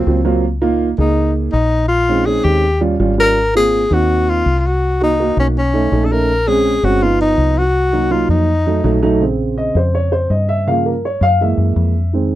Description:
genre	Afro-Cuban jazz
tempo	164 BPM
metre	4/4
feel	straight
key	Bb minor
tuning	A4 = 440 Hz
part	breathy tenor saxophone	melody	0.0-9.0 s	C4 to Bb4	-16 LUFS	left 2 dB	none
part	deep dub fingered electric bass	bass	0.0-12.4 s	G1 to G2	-17 LUFS	left 1 dB	none
part	dark upright piano	accompaniment	0.1-12.4 s	Db3 to F5	-17 LUFS	right 3 dB	none
room	light reverb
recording	dry, close 1970s-style studio recording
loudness	-13 LUFS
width	side -14 dB against mid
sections	0.0-9.2 A section; 9.2-12.4 B section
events	upright piano solo 9.2-12.4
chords	0.4 Db69; 1.9 Bbm11; 2.6 Eb9; 3.4 Ab69; 4.8 Cm7b5; 5.6 B9; 6.3 Bbm9; 7.0 Gaug7; 7.8 Cm7b5; 8.5 F7b9; 9.2 Bbm7; 10.7 Gm7b5; 11.4 Gb9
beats	0.07 | 0.44 0.80 1.17 1.53 | 1.90 2.27 2.63 3.00 | 3.36 3.73 4.10 4.46 | 4.83 5.19 5.56 5.92 | 6.29 6.66 7.02 7.39 | 7.75 8.12 8.48 8.85 | 9.21 9.58 9.94 10.31 | 10.68 11.04 11.40 11.77 | 12.14

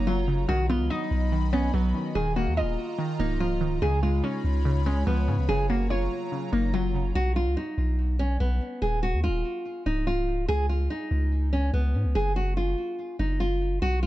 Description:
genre	hip hop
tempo	144 BPM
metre	4/4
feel	half-time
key	Eb minor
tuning	A4 = 440 Hz
part	nylon-string guitar	melody	0.0-14.1 s	B3 to Ab4	-29 LUFS	equal	low-pass filter, digital delay
part	warbly dusty pluck	accompaniment	0.0-7.2 s	Db3 to D#5	-29 LUFS	equal	chorus, phaser, low-pass filter
part	airy breathy pad	sustained chords	0.0-7.1 s	Gb3 to B5	-36 LUFS	left 2 dB	chorus
part	long sustained 808-style bass	bass	0.0-14.1 s	Db1 to Ab2	-26 LUFS	equal	none
room	little or no reverb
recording	dark, warm production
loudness	-24 LUFS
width	side -15 dB against mid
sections	0.0-7.2 A section; 7.2-14.1 B section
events	none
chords	0.5 B; 2.2 Ebsus2; 3.8 Db7; 5.5 Gb; 7.2 B; 8.8 Ebsus2; 10.5 Db5; 12.2 Ebmadd9/Gb (rootless)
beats	0.07 | 0.49 0.90 1.32 1.74 | 2.15 2.57 2.99 3.40 | 3.82 4.24 4.65 5.07 | 5.49 5.90 6.32 6.74 | 7.15 7.57 7.99 8.40 | 8.82 9.24 9.65 10.07 | 10.49 10.90 11.32 11.74 | 12.15 12.57 12.99 13.40 | 13.82

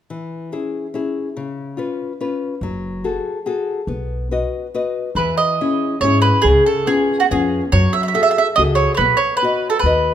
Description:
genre	italian folk, Italian serenade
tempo	141 BPM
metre	3/4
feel	straight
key	E major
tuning	A4 = 440 Hz
part	nylon-string guitar	accompaniment	0.1-10.1 s	C#3 to D#5	-21 LUFS	left 4 dB	none
part	upright bass	bass	2.6-10.1 s	F#1 to G#2	-20 LUFS	equal	none
part	mandolin	melody	5.2-10.1 s	F#4 to E5	-16 LUFS	right 3 dB	none
room	moderate recital hall reverb, RT60 1.6 s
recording	minimal, uncompressed stereo recording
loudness	-16 LUFS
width	side -10 dB against mid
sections	0.1-5.2 A section; 5.2-10.1 B section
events	none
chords	0.1 E6; 1.4 C#7; 2.6 F#madd9; 3.9 B; 5.2 E6; 6.5 C#7; 7.7 F#madd9; 9.0 B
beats	| 0.08 0.51 0.93 | 1.36 1.78 2.20 | 2.62 3.04 3.46 | 3.89 4.31 4.74 | 5.17 5.60 6.03 | 6.45 6.88 7.30 | 7.72 8.15 8.57 | 8.99 9.42 9.84

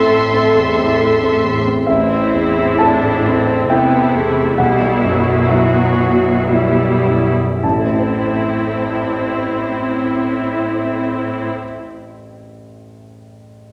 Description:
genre	cinematic, emotional film score for orchestra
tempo	52-68 BPM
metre	3/4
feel	rubato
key	A dorian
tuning	A4 = 438 Hz
part	warm chamber violin section	melody	0.0-1.6 s	C6	-24 LUFS	equal	none
part	warm symphonic violin section	second line	0.0-1.6 s	E5	-25 LUFS	equal	none
part	clear symphonic viola section	accompaniment	0.0-11.5 s	F#3 to A4	-20 LUFS	equal	none
part	warm concert grand piano	accompaniment	0.0-13.7 s	A1 to A5	-20 LUFS	equal	none
part	clear studio cello section	bass	0.0-11.5 s	A2 to C3	-22 LUFS	equal	none
room	wet scoring stage reverb, RT60 1.8 s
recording	none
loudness	-15 LUFS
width	mono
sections	0.0-1.9 A section; 1.9-7.6 B section; 7.6-10.9 C section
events	slowing down 0.5-7.6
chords	0.0 Am; 4.6 Emadd9/B; 7.6 Am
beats	0.09 0.98 | 1.87 2.80 3.69 | 4.58 5.50 6.51 | 7.63 8.72 9.81

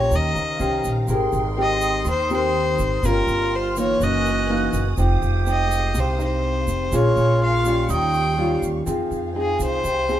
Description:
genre	bossa nova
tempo	123 BPM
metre	4/4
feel	straight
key	Ab major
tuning	A4 = 439 Hz
part	clear violin	melody	0.0-10.2 s	Ab4 to G5	-23 LUFS	left 1 dB	none
part	nylon-string guitar	accompaniment	0.0-10.2 s	Gb2 to C5	-24 LUFS	left 1 dB	none
part	warm symphonic string section	sustained chords	0.0-10.2 s	Ab3 to Gb6	-34 LUFS	right 1 dB	none
part	upright bass	bass	0.0-10.2 s	F1 to F2	-23 LUFS	right 1 dB	none
part	tube shaker	percussion	0.1-10.2 s	none	-39 LUFS	right 7 dB	none
part	bright alto flute	second line	1.1-8.6 s	Eb4 to G4	-27 LUFS	right 3 dB	none
room	moderate small room reverb, RT60 0.5 s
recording	band playing live in one room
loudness	-18 LUFS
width	side -11 dB against mid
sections	0.0-8.9 A section; 8.9-10.2 B section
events	violin solo 8.9-10.2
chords	0.1 Eb13; 1.1 Abmaj9; 3.0 Gm7b5; 4.0 Gb13; 5.0 Fm7; 6.9 Bbm7; 7.9 Eb9; 8.9 Fm7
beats	0.12 0.60 | 1.09 1.57 2.06 2.54 | 3.03 3.52 4.00 4.49 | 4.98 5.46 5.95 6.44 | 6.92 7.41 7.90 8.38 | 8.87 9.36 9.84

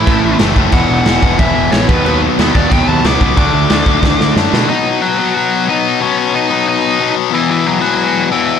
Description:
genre	punk rock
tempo	182 BPM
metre	4/4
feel	straight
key	unclear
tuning	A4 = 440 Hz
part	nasal lead guitar with a parked wah	melody	0.0-8.6 s	E3 to D6	-17 LUFS	right 2 dB	overdrive
part	distorted electric guitar	riff	0.0-4.7 s	E2 to D4	-18 LUFS	right 16 dB	distortion
part	fuzz guitar	riff	0.0-4.7 s	E2 to D4	-21 LUFS	right 1 dB	none
part	tight distorted guitar	riff	0.0-8.6 s	E2 to D4	-15 LUFS	left 12 dB	distortion
part	fuzz picked electric bass	bass	0.0-4.6 s	E1 to B2	-17 LUFS	right 1 dB	overdrive
part	raw garage drum kit	drums	0.1-4.6 s	crash cymbal, kick drum, snare drum	-15 LUFS	equal	none
room	light reverb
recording	none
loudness	-10 LUFS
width	side -8 dB against mid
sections	0.0-4.7 A section; 4.7-8.6 B section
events	lead electric guitar solo 0.0-4.7; drum fill 4.0-4.7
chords	0.0 A5; 0.7 E5; 1.9 B/D#; 3.4 D5; 4.7 B; 7.3 E5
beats	0.07 0.40 | 0.73 1.06 1.39 1.72 | 2.05 2.38 2.71 3.04 | 3.37 3.70 4.03 4.36 | 4.69 5.02 5.35 5.68 | 6.00 6.33 6.66 6.99 | 7.32 7.65 7.98 8.31

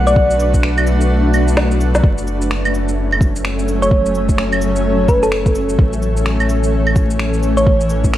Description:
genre	future garage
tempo	128 BPM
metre	4/4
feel	swing 61% on 16ths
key	unclear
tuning	A4 = 439 Hz
part	granular cloud pad	sustained chords	0.0-8.2 s	E3 to D5	-19 LUFS	left 1 dB	built-in reverb, sidechain pumping
part	warm sub bass	bass	0.0-8.2 s	F#1 to B1	-18 LUFS	equal	tube saturation, sidechain pumping
part	drifting glass-harmonics texture	texture	0.0-2.1 s	F#5	-28 LUFS	right 5 dB	chorus, built-in reverb
part	thumb-piano-like synth pluck	melody	0.1-0.3, 3.8-7.8 s	A4 to D5	-18 LUFS	equal	chorus, tape echo
part	electronic shaker, cabasa, finger snaps, claves and snare drum	drums	0.1-8.2 s	none	-22 LUFS	right 1 dB	overdrive, studio reverb
part	electronic kick drum	drums	0.2-8.1 s	none	-14 LUFS	equal	overdrive, studio reverb
room	moderate lush hall reverb, RT60 1.8 s, digital ambience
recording	vinyl crackle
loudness	-13 LUFS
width	side -13 dB against mid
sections	0.0-2.0 A section; 2.0-8.2 A section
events	kick drops out 1.1-2.0; drum fill 1.6-2.0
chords	0.0 Bm7; 2.0 F#m; 5.8 A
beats	| 0.16 0.63 1.10 1.57 | 2.04 2.50 2.97 3.44 | 3.91 4.38 4.85 5.32 | 5.79 6.25 6.72 7.19 | 7.66 8.13

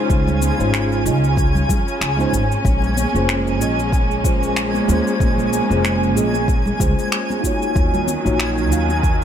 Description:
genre	sunset chillout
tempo	94 BPM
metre	4/4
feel	swing 56% on 16ths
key	unclear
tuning	A4 = 440 Hz
part	mellow tine electric piano	accompaniment	0.0-8.9 s	Ab3 to F5	-23 LUFS	moving between left 2 dB and right 5 dB	auto-pan, low-pass filter, tape echo
part	warm symphonic string section	sustained chords	0.0-9.2 s	Db3 to F4	-23 LUFS	equal	none
part	twinkling granular texture	texture	0.0-9.2 s	Ab5	-25 LUFS	right 1 dB	built-in reverb
part	upright bass	bass	0.1-9.2 s	F1 to F2	-21 LUFS	equal	none
part	electronic cabasa and finger snaps	drums	0.1-9.2 s	none	-26 LUFS	left 2 dB	overdrive
part	electronic kick drum	drums	0.1-9.2 s	none	-19 LUFS	equal	overdrive
part	congas	percussion	0.3-9.0 s	none	-29 LUFS	left 2 dB	none
room	light reverb, digital ambience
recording	none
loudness	-16 LUFS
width	side -9 dB against mid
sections	0.0-9.2 A section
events	filter sweep on tine electric piano 0.0-9.2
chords	0.0 Dbmaj7; 2.6 Bbm7; 7.8 Ebm7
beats	| 0.10 0.73 1.37 2.01 | 2.65 3.29 3.92 4.56 | 5.20 5.84 6.48 7.12 | 7.75 8.39 9.03

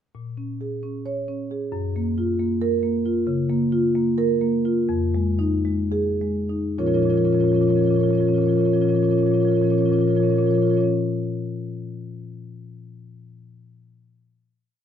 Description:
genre	classical, contemporary piece for solo marimba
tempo	197-274 BPM (eighths)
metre	7/8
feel	rubato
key	Bb minor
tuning	A4 = 439 Hz
part	marimba with soft mallets	solo	0.1-10.9 s	F2 to Db5	-20 LUFS	equal	none
room	light reverb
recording	none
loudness	-19 LUFS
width	side -8 dB against mid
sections	0.1-6.8 A section; 6.8-10.8 final chord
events	slowing down 2.5-6.8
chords	0.1 Bbm7; 1.7 Gbmaj7; 3.3 Db6; 4.9 Fm7; 6.8 Bbm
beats	| 0.14 0.37 0.60 0.83 1.06 1.28 1.51 | 1.73 1.95 2.17 2.39 2.61 2.83 3.05 | 3.27 3.50 3.72 3.95 4.18 4.41 4.65 | 4.89 5.14 5.39 5.65 5.92 6.20 6.50 | 6.79 7.07 7.36 7.64 7.92 8.21 8.49 | 8.78 9.08 9.37 9.65 9.93 10.21 10.49

